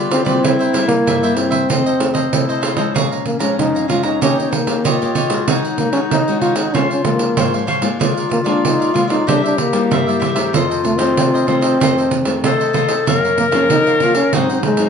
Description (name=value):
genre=samba and choro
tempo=95 BPM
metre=4/4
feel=straight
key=Bb minor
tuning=A4 = 441 Hz
part: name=warm clarinet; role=second line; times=0.0-14.9 s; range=Db4 to Bb4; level=-20 LUFS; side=left 4 dB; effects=none
part: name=cavaquinho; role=accompaniment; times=0.0-14.7 s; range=Eb4 to Bb5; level=-23 LUFS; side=equal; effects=none
part: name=nylon-string guitar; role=accompaniment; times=0.0-14.9 s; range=F2 to G4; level=-24 LUFS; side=left 5 dB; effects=none
part: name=breathy trombone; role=melody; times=0.1-14.9 s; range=Ab3 to F4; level=-18 LUFS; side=equal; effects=none
part: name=pandeiro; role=percussion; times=0.1-14.9 s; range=none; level=-19 LUFS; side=right 5 dB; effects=none
room=moderate studio reverb, RT60 0.8 s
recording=nothing above 10.4 kHz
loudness=-13 LUFS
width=side -6 dB against mid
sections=0.0-3.0 A section; 3.0-14.9 B section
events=none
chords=0.4 C7; 1.7 F7; 3.0 Bbm7; 4.2 Eb7; 5.5 Ab7sus4/Eb; 6.8 Dbmaj7; 8.0 Bb7/D; 9.3 C7; 10.5 F7; 13.1 Gbmaj7; 14.3 Ab7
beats=| 0.43 1.06 1.70 2.33 | 2.96 3.59 4.22 4.86 | 5.49 6.12 6.75 7.38 | 8.02 8.65 9.28 9.92 | 10.55 11.18 11.81 12.45 | 13.08 13.71 14.34